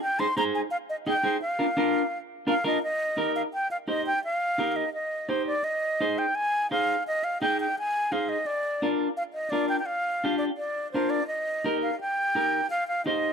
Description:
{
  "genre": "latin",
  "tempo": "170 BPM",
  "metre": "4/4",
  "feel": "straight",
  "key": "Eb major",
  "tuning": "A4 = 441 Hz",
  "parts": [
    { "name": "breathy concert flute", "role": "melody", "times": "0.0-13.3 s", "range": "C5 to C6", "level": "-26 LUFS", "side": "equal", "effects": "none" },
    { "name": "clean electric guitar", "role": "accompaniment", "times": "0.2-13.3 s", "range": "D4 to Eb5", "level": "-28 LUFS", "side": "equal", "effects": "none" }
  ],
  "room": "light reverb",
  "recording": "dry, close 1970s-style studio recording",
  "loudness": "-25 LUFS",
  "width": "side -6 dB against mid",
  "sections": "0.0-2.8 A section; 2.8-13.3 B section",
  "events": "none",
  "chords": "0.0 Ab; 1.4 Bb; 2.8 Eb; 5.6 Ab; 8.5 Bb; 11.3 Eb",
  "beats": "| 0.01 0.36 0.72 1.07 | 1.42 1.77 2.12 2.47 | 2.82 3.18 3.53 3.88 | 4.23 4.58 4.94 5.29 | 5.64 6.00 6.35 6.70 | 7.05 7.41 7.76 8.11 | 8.47 8.82 9.17 9.53 | 9.88 10.23 10.59 10.94 | 11.29 11.65 12.00 12.35 | 12.71 13.06"
}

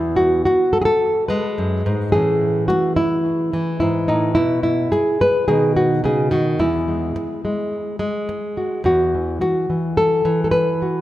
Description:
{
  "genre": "folk, solo fingerstyle acoustic guitar",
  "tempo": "107 BPM",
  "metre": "4/4",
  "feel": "straight",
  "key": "E major",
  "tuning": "A4 = 442 Hz",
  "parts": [
    { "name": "nylon-string guitar", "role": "solo", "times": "0.0-11.0 s", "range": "E2 to B4", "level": "-16 LUFS", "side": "equal", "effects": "none" }
  ],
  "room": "moderate concert hall reverb, RT60 2.1 s",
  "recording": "none",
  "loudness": "-16 LUFS",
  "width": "side -14 dB against mid",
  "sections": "0.0-8.9 A section; 8.9-11.0 A section",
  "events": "none",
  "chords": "0.0 Eadd9; 2.1 A; 4.4 N.C.; 5.5 B; 6.6 E; 8.9 Esus2",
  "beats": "0.47 1.02 1.58 | 2.14 2.69 3.25 3.81 | 4.36 4.92 5.47 6.03 | 6.59 7.15 7.71 8.28 | 8.85 9.41 9.97 10.53"
}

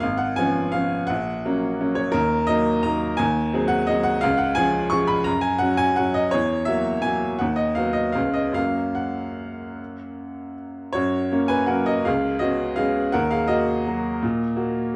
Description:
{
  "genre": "classical, piano waltz",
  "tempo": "143-182 BPM",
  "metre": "3/4",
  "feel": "rubato",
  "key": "F# major",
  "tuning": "A4 = 440 Hz",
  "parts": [
    { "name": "clear upright piano", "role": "solo", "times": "0.0-15.0 s", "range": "Ab1 to C#6", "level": "-23 LUFS", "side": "equal", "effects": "none" }
  ],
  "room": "moderate recital hall reverb, RT60 1.8 s",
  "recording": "dark, warm production",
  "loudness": "-22 LUFS",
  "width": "mono",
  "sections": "0.0-11.0 A section; 11.0-15.0 B section",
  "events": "none",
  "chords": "0.0 Db7/Ab; 1.1 Gb/Bb; 2.2 D#m; 3.2 G#7/D#; 4.2 C#; 5.3 F#5; 6.3 F#7/E; 7.4 B/D#; 8.2 C#7; 8.6 F#; 12.1 C#7; 13.1 D#m",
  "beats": "| 0.03 0.38 0.74 | 1.10 1.45 1.80 | 2.15 2.50 2.86 | 3.20 3.54 3.88 | 4.23 4.58 4.93 | 5.28 5.63 6.00 | 6.35 6.69 7.05 | 7.41 7.78 8.16 | 8.57 8.98 9.39 | 9.79 10.17 10.56 | 10.96 11.32 11.70 | 12.06 12.42 12.78 | 13.14 13.50 13.86 | 14.22 14.57 14.94"
}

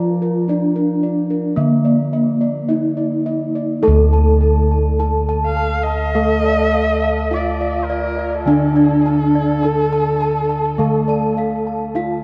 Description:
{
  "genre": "Javanese gamelan",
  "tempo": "52 BPM",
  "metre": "4/4",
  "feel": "straight",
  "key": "D pelog",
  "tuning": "A4 = 440 Hz",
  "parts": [
    { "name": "gamelan-type bronze metallophone", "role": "melody", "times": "0.0-12.2 s", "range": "Bb3 to A4", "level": "-22 LUFS", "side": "equal", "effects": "none" },
    { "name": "gamelan-type bronze metallophone", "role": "accompaniment", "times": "0.0-12.2 s", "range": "D3 to Bb3", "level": "-24 LUFS", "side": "equal", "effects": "none" },
    { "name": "gamelan-type bossed gongs", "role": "arpeggios", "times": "0.0-12.2 s", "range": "Bb4 to A5", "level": "-30 LUFS", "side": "equal", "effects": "none" },
    { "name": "gamelan-type bossed gongs", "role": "bass", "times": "0.0-12.2 s", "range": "D2 to A4", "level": "-22 LUFS", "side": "equal", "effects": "none" },
    { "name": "gamelan-type bronze metallophone", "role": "arpeggios", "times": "3.8-12.2 s", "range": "D5 to A5", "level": "-29 LUFS", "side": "equal", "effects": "none" },
    { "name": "dark erhu", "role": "second line", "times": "5.5-11.6 s", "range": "A4 to F5", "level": "-25 LUFS", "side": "equal", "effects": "none" }
  ],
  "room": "wet cathedral reverb, RT60 6.8 s",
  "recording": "in a vast, echoing space",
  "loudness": "-17 LUFS",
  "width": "mono",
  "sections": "0.0-3.8 A section; 3.8-12.2 B section",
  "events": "none",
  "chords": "none",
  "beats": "0.48 1.57 2.68 | 3.83 4.99 6.15 7.31 | 8.47 9.63 10.80 11.96"
}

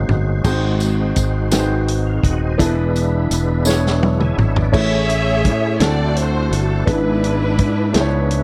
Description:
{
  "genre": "slow gospel",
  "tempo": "56 BPM (dotted quarters)",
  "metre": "6/8",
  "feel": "straight",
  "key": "unclear",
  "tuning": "A4 = 440 Hz",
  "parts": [
    { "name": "warm grand piano", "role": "accompaniment", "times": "0.0-8.4 s", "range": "Ab2 to Db5", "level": "-24 LUFS", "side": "equal", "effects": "none" },
    { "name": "tonewheel organ", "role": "sustained chords", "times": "0.0-8.4 s", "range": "Ab3 to G#5", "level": "-28 LUFS", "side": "equal", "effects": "slow rotary speaker, overdrive, chorus vibrato" },
    { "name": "fingered electric bass", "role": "bass", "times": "0.0-8.4 s", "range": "Eb1 to A2", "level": "-21 LUFS", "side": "equal", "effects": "none" },
    { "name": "warm soul drum kit", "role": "drums", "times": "0.1-8.4 s", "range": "crash cymbal, hi-hat, kick drum, snare drum, toms", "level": "-23 LUFS", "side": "equal", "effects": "none" },
    { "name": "tambourine", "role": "percussion", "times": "0.4-4.0 s", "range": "none", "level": "-31 LUFS", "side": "equal", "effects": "none" },
    { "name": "warm studio string section", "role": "melody", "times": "4.8-8.3 s", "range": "D4 to E5", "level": "-24 LUFS", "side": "equal", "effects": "none" }
  ],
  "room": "light reverb, small room ambience",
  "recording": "dark, warm production",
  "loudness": "-17 LUFS",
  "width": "mono",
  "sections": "0.4-4.7 A section; 4.7-8.4 B section",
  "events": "drum fill 0.0-0.4, 3.7-4.7",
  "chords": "0.4 Ab7; 2.6 E7; 4.7 Amaj7; 5.8 D9; 6.9 E7/G#",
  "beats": "| 0.44 1.52 | 2.59 3.66 | 4.74 5.81 | 6.88 7.95"
}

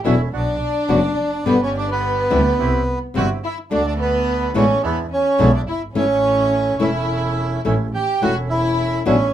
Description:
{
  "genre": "tango",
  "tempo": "106 BPM",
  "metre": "4/4",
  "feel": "rubato",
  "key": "unclear",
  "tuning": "A4 = 441 Hz",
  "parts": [
    { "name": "flamenco guitar", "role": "accompaniment", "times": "0.0-9.2 s", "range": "B2 to G4", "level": "-19 LUFS", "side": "left 3 dB", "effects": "none" },
    { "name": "bandoneon", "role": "stabs", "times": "0.0-9.3 s", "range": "G#3 to G4", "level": "-28 LUFS", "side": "right 5 dB", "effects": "none" },
    { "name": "bandoneon", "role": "melody", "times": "0.1-9.3 s", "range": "B3 to G5", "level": "-20 LUFS", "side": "right 2 dB", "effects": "none" },
    { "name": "rich studio violin section", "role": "second line", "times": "0.1-9.3 s", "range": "B3 to G4", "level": "-25 LUFS", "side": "left 2 dB", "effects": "none" },
    { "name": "warm double bass", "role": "bass", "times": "0.1-9.3 s", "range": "E1 to E2", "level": "-22 LUFS", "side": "right 1 dB", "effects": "none" }
  ],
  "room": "moderate club reverb, RT60 0.5 s",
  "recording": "minimal, uncompressed stereo recording",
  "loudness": "-16 LUFS",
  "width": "side -11 dB against mid",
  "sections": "0.0-9.3 A section",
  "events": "none",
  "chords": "0.3 Bm; 1.5 G; 2.6 C; 3.7 D; 4.8 E7; 6.0 A",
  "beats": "0.34 0.90 | 1.47 2.03 2.60 3.16 | 3.72 4.28 4.83 5.39 | 5.96 6.52 7.08 7.65 | 8.22 8.78"
}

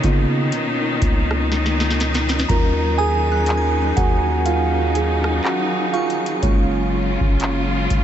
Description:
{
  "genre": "contemporary R&B",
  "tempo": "61 BPM",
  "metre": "4/4",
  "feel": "swing 58% on 16ths",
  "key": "Eb minor",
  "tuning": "A4 = 440 Hz",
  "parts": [
    { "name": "muted felt-like synth keys", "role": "accompaniment", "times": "0.0-8.0 s", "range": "Gb3 to Bb5", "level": "-21 LUFS", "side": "right 4 dB", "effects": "chorus" },
    { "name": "clear studio string section", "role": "sustained chords", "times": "0.0-8.0 s", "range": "B2 to F4", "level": "-23 LUFS", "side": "left 3 dB", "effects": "sidechain pumping" },
    { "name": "long sustained 808-style bass", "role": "bass", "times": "0.0-8.0 s", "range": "Gb1 to Db3", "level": "-22 LUFS", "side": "equal", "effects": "none" },
    { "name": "booming analog drum machine", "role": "drums", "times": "0.0-8.0 s", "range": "handclaps, hi-hat, kick drum, rim click, snare drum", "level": "-23 LUFS", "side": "equal", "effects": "none" },
    { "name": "mallet-like synth pluck", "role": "texture", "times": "3.0-7.3 s", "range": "Db6 to Ab6", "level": "-36 LUFS", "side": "left 1 dB", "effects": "chorus, diffuse ambient delay" }
  ],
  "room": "moderate huge ambient reverb, RT60 6.5 s",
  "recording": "dreamy mix soaked in reverb, nothing above 8.0 kHz",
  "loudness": "-16 LUFS",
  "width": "side -10 dB against mid",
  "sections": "0.0-8.0 A section",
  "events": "synth keys solo 0.0-8.0; drum fill 1.5-2.5",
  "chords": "0.0 Db13; 2.5 Ebm9; 6.4 Gbmaj7",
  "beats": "0.53 1.51 | 2.49 3.48 4.46 5.44 | 6.43 7.41"
}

